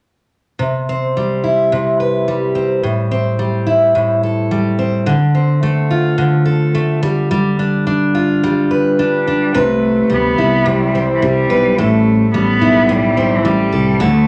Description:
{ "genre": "acoustic pop", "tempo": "107 BPM", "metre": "4/4", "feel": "swing 60% on 16ths", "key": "C major", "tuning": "A4 = 440 Hz", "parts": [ { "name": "picked steel-string acoustic guitar", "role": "accompaniment", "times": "0.6-14.3 s", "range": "A2 to B4", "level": "-16 LUFS", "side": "equal", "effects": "none" }, { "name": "rich cello", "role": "melody", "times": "9.0-14.3 s", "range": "E3 to B3", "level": "-19 LUFS", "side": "equal", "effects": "none" }, { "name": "sustaining fretless electric bass", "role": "bass", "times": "9.6-14.3 s", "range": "A1 to D2", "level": "-20 LUFS", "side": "equal", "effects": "none" } ], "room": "moderate large studio reverb, RT60 0.8 s", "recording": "none", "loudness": "-15 LUFS", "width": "mono", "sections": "0.6-9.5 A section; 9.5-14.3 B section", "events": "none", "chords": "0.6 Cmaj7; 2.8 Am7; 5.1 Dm7; 7.0 G7; 9.5 Cmaj7; 11.8 Am7", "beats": "| 0.59 1.15 1.71 2.27 | 2.83 3.39 3.95 4.51 | 5.07 5.63 6.19 6.75 | 7.31 7.87 8.43 8.99 | 9.55 10.11 10.66 11.22 | 11.78 12.34 12.90 13.46 | 14.01" }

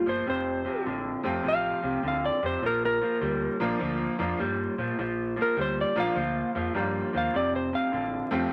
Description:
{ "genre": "electric blues shuffle", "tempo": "102 BPM", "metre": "4/4", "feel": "swing 66% on 8ths", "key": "unclear", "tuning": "A4 = 440 Hz", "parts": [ { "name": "clean lap steel guitar", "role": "melody", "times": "0.0-8.5 s", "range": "Bb4 to F5", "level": "-30 LUFS", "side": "equal", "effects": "none" }, { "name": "electric guitar through a small old amp", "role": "riff", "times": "0.0-8.5 s", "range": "F2 to G3", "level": "-32 LUFS", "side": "equal", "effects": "none" }, { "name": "deep dub fingered electric bass", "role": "bass", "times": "0.1-8.4 s", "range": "F1 to Bb2", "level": "-40 LUFS", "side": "equal", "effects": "none" }, { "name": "bright upright piano", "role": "accompaniment", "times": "1.2-8.5 s", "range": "F3 to F4", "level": "-33 LUFS", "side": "equal", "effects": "none" } ], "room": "moderate studio reverb, RT60 0.9 s", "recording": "vinyl crackle", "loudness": "-28 LUFS", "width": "mono", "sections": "0.0-8.5 A section", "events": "none", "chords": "0.3 F; 2.6 Bb; 7.3 F", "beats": "| 0.26 0.85 1.44 2.03 | 2.62 3.21 3.80 4.39 | 4.98 5.57 6.16 6.75 | 7.33 7.92 8.51" }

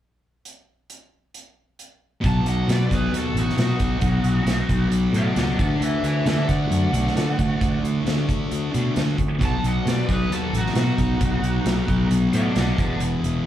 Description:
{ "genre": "blues rock power trio and southern rock", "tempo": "134 BPM", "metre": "4/4", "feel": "straight", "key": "unclear", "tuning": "A4 = 440 Hz", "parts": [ { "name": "big rock drum kit", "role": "drums", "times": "0.5-13.3 s", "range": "hi-hat, kick drum, snare drum", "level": "-26 LUFS", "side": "right 1 dB", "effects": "none" }, { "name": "overdriven tonewheel organ", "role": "sustained chords", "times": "2.2-13.5 s", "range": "F#3 to G#4", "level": "-40 LUFS", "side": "right 2 dB", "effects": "none" }, { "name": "thick fuzz guitar", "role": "riff", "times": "2.2-13.5 s", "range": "E2 to D4", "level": "-24 LUFS", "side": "left 1 dB", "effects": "distortion, slapback echo" }, { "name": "fuzz fingered electric bass", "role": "bass", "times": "2.2-13.4 s", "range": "E1 to D3", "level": "-23 LUFS", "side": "equal", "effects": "overdrive" }, { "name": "overdriven slide guitar", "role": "melody", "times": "2.3-13.0 s", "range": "F#4 to A5", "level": "-29 LUFS", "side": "equal", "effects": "slapback echo" }, { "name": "biting lead guitar", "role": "second line", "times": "2.3-13.0 s", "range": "D#4 to F#5", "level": "-36 LUFS", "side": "right 4 dB", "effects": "overdrive, slapback echo" } ], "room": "light reverb", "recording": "live gig heard through the venue's PA, club reverb", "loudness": "-19 LUFS", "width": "side -11 dB against mid", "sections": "0.4-2.2 A section; 2.2-13.5 B section", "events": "none", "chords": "0.4 N.C.; 2.2 B; 5.6 D; 9.4 B; 12.8 E", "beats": "| 0.44 0.89 1.33 1.78 | 2.23 2.68 3.12 3.57 | 4.02 4.47 4.92 5.36 | 5.81 6.26 6.71 7.16 | 7.61 8.05 8.50 8.95 | 9.40 9.85 10.30 10.75 | 11.20 11.65 12.10 12.55 | 13.00 13.45" }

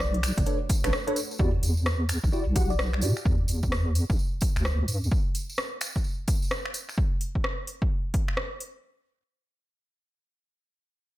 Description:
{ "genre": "UK garage, two-step garage", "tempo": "129 BPM", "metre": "4/4", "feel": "swing 62% on 16ths", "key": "unclear", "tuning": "A4 = 440 Hz", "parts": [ { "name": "bell-like FM electric piano", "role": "melody", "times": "0.0-2.8 s", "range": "D5", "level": "-38 LUFS", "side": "left 2 dB", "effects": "chorus, phaser, ping-pong delay" }, { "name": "warm analog pad", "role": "sustained chords", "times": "0.0-1.4 s", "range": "A3 to F#4", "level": "-47 LUFS", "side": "right 1 dB", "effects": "none" }, { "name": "deep soft wobble bass", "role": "bass", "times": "0.0-5.1 s", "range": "F#1 to A2", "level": "-26 LUFS", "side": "equal", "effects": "chorus" }, { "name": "house drum kit", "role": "drums", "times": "0.0-8.7 s", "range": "finger snaps, hi-hat, rim click", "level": "-32 LUFS", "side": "equal", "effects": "overdrive" }, { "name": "tambourine", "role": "percussion", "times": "0.0-7.0 s", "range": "none", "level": "-38 LUFS", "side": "right 2 dB", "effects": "none" }, { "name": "electronic kick drum", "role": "drums", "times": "0.4-8.3 s", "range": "none", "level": "-26 LUFS", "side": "equal", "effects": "overdrive" }, { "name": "tine electric piano", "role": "stabs", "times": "0.5-3.1 s", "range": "D4 to F#5", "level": "-32 LUFS", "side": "equal", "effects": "ensemble chorus, low-pass filter, ping-pong delay" } ], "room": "little or no reverb", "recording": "none", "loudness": "-24 LUFS", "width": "side -16 dB against mid", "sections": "0.0-1.4 A section; 1.4-8.8 B section; 8.8-11.2 C section", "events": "break 0.9-1.4; filter sweep on tine electric piano 1.4-3.3", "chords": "0.0 Bm9; 1.4 Em9; 5.1 N.C.", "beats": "0.00 0.46 0.93 | 1.39 1.86 2.32 2.79 | 3.25 3.72 4.18 4.65 | 5.12 5.58 6.04 6.51 | 6.97 7.44 7.91 8.37" }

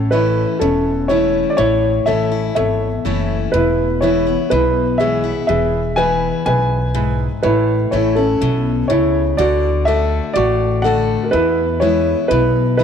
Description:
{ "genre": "honky-tonk and classic country", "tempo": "123 BPM", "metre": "4/4", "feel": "straight", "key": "A major", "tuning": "A4 = 441 Hz", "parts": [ { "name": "dark upright piano", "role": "melody", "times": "0.0-12.8 s", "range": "C#4 to G#5", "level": "-16 LUFS", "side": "equal", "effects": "none" }, { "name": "picked steel-string acoustic guitar", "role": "accompaniment", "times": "0.0-12.8 s", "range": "E2 to F#4", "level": "-22 LUFS", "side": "left 10 dB", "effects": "none" }, { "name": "upright bass", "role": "bass", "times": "0.0-12.8 s", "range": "E1 to E2", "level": "-20 LUFS", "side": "right 1 dB", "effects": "none" }, { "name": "clear upright piano", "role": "accompaniment", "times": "0.1-12.8 s", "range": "E4 to C#6", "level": "-28 LUFS", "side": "right 11 dB", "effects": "none" } ], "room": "light reverb", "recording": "1960s-style stereo with parts hard left and right", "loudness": "-14 LUFS", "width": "side -7 dB against mid", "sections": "0.0-12.8 A section", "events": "none", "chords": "0.0 A; 3.5 E; 7.4 A; 9.4 D; 11.3 E", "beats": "0.12 0.61 1.10 | 1.58 2.07 2.56 3.05 | 3.54 4.02 4.51 5.00 | 5.49 5.97 6.46 6.95 | 7.44 7.92 8.41 8.90 | 9.39 9.87 10.36 10.85 | 11.33 11.82 12.31 12.79" }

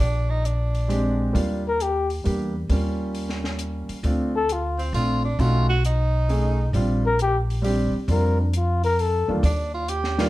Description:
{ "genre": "jazz, small-group swing and bop", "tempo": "133 BPM", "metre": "3/4", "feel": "swing 67% on 8ths", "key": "Bb major", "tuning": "A4 = 440 Hz", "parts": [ { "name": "breathy tenor saxophone", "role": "second line", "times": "0.0-1.4, 4.8-6.7, 9.4-10.3 s", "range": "C4 to G4", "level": "-28 LUFS", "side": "right 2 dB", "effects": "none" }, { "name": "upright bass", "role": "bass", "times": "0.0-10.3 s", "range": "Bb1 to F2", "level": "-23 LUFS", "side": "equal", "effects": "none" }, { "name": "compact cocktail drum kit", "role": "drums", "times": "0.5-10.3 s", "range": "hi-hat, kick drum, snare drum", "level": "-30 LUFS", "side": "equal", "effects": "none" }, { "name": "clear concert grand piano", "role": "accompaniment", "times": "0.9-10.3 s", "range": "Eb2 to Ab4", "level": "-25 LUFS", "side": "right 1 dB", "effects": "none" }, { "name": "warm flugelhorn", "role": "melody", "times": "1.7-2.1, 4.4-4.8, 7.1-9.4 s", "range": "D4 to Bb4", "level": "-23 LUFS", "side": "left 3 dB", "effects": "none" } ], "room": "light reverb", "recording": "dark, warm production", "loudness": "-20 LUFS", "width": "side -17 dB against mid", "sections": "0.0-9.4 A section", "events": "none", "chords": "0.0 Bb13; 1.3 Ebmaj9; 2.7 Eb9; 4.0 Dm7; 5.4 B9; 6.7 Bb6; 9.4 Ebmaj7", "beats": "| 0.00 0.45 0.90 | 1.35 1.80 2.25 | 2.70 3.15 3.60 | 4.05 4.50 4.95 | 5.40 5.84 6.29 | 6.75 7.19 7.64 | 8.09 8.54 8.99 | 9.44 9.89" }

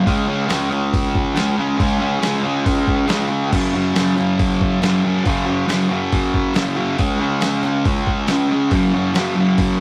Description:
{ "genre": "garage rock duo or trio", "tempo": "139 BPM", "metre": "4/4", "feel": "straight", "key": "unclear", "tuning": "A4 = 441 Hz", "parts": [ { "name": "fuzz guitar", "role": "riff", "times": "0.0-9.8 s", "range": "F#2 to C#4", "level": "-19 LUFS", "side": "equal", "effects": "distortion" }, { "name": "dusty soul sampler-style drum kit", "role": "drums", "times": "0.1-9.7 s", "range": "crash cymbal, hi-hat, kick drum, snare drum", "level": "-24 LUFS", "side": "equal", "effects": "none" }, { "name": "group handclap", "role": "percussion", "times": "0.5-9.3 s", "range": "none", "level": "-40 LUFS", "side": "equal", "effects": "none" } ], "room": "moderate small room reverb, RT60 0.6 s", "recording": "rough rehearsal-room recording", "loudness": "-18 LUFS", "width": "mono", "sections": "0.0-9.8 A section", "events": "none", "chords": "0.1 C#5; 3.5 F#5; 7.0 C#5; 8.7 F#5", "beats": "| 0.06 0.49 0.93 1.36 | 1.79 2.22 2.66 3.09 | 3.52 3.95 4.39 4.82 | 5.25 5.68 6.12 6.55 | 6.98 7.42 7.85 8.28 | 8.71 9.15 9.58" }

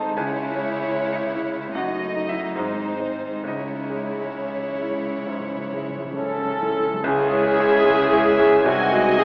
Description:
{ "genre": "classical, romantic movement for piano and orchestra", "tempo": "65-79 BPM", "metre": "4/4", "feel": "rubato", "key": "C# minor", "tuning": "A4 = 440 Hz", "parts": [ { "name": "clear concert grand piano", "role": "melody", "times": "0.0-9.2 s", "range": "B#1 to B#5", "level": "-28 LUFS", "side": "equal", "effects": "none" }, { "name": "warm chamber violin section", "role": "melody", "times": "0.0-9.2 s", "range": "B#4 to G#5", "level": "-34 LUFS", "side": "equal", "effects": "none" }, { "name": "warm chamber violin section", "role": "second line", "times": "0.0-9.2 s", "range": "D#4 to D#5", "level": "-35 LUFS", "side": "equal", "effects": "none" }, { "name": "dark chamber viola section", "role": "accompaniment", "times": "0.0-9.2 s", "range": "G#3 to A4", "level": "-26 LUFS", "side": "equal", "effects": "none" }, { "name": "mellow French horn section", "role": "sustained chords", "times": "0.0-9.2 s", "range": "G#3 to E4", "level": "-35 LUFS", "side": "equal", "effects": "none" }, { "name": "dark chamber cello section", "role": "bass", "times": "0.0-9.2 s", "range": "F#2 to C#3", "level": "-36 LUFS", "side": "equal", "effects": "none" }, { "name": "dark symphonic double bass section", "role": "bass", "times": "0.0-9.2 s", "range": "F#1 to C#2", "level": "-42 LUFS", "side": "equal", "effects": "none" }, { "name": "timpani", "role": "percussion", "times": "0.2-7.0 s", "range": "C#3", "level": "-42 LUFS", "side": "equal", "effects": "none" }, { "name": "clear clarinet", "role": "second line", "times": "6.2-9.2 s", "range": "B#3 to C#4", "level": "-33 LUFS", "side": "equal", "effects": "none" }, { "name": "mellow large flute ensemble", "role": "second line", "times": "6.2-9.2 s", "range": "F#5 to A5", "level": "-33 LUFS", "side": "equal", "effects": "none" }, { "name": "clear trumpet", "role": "stabs", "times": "6.2-9.2 s", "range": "F#4 to A4", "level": "-29 LUFS", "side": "equal", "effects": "none" }, { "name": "clear oboe", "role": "second line", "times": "7.0-9.2 s", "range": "G#5", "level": "-31 LUFS", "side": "equal", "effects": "none" }, { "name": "warm bassoon", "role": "accompaniment", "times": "7.0-9.2 s", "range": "E3", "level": "-29 LUFS", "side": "equal", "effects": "none" } ], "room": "wet concert hall reverb, RT60 1.9 s", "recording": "AM radio sound", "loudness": "-22 LUFS", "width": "mono", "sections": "0.0-7.0 A section; 7.0-9.2 A section", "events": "timpani fill 3.5-7.0", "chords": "0.2 C#m; 1.7 D#dim/F#; 2.6 G#; 3.5 C#m; 8.7 G#/B#", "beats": "| 0.16 0.95 1.75 2.57 | 3.46 4.38 5.28 6.16 | 7.03 7.86 8.65" }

